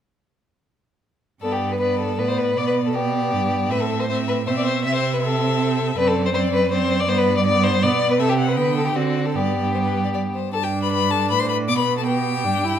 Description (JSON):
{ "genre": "quick classical-period movement for string quartet", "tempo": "158 BPM", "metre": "3/4", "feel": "rubato", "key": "G major", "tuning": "A4 = 440 Hz", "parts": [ { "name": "rich violin", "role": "melody", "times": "1.4-12.8 s", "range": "B4 to D6", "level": "-26 LUFS", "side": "left 10 dB", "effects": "none" }, { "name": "rich violin", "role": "second line", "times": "1.4-12.8 s", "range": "F#4 to E5", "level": "-22 LUFS", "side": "left 2 dB", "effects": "none" }, { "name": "rich viola", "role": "accompaniment", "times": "1.4-12.8 s", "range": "B3 to E4", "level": "-26 LUFS", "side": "right 3 dB", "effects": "none" }, { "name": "clear cello", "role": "bass", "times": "1.4-12.8 s", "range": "F#2 to D3", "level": "-23 LUFS", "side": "right 4 dB", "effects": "none" } ], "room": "moderate recital hall reverb, RT60 1.4 s", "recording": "none", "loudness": "-18 LUFS", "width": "side -9 dB against mid", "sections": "1.4-10.5 A section; 10.5-12.8 A section", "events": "none", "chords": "1.4 G; 2.6 G/B; 3.7 Am; 4.8 Am/C; 6.0 D7/F#; 7.1 G; 8.2 C; 8.6 G/D; 8.9 D7; 9.3 G; 10.5 G5; 11.7 G/B", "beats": "| 1.42 1.80 2.18 | 2.56 2.95 3.33 | 3.71 4.09 4.47 | 4.85 5.23 5.60 | 5.98 6.34 6.71 | 7.08 7.46 7.83 | 8.19 8.57 8.95 | 9.34 9.74 10.14 | 10.53 10.92 11.30 | 11.69 12.06 12.44" }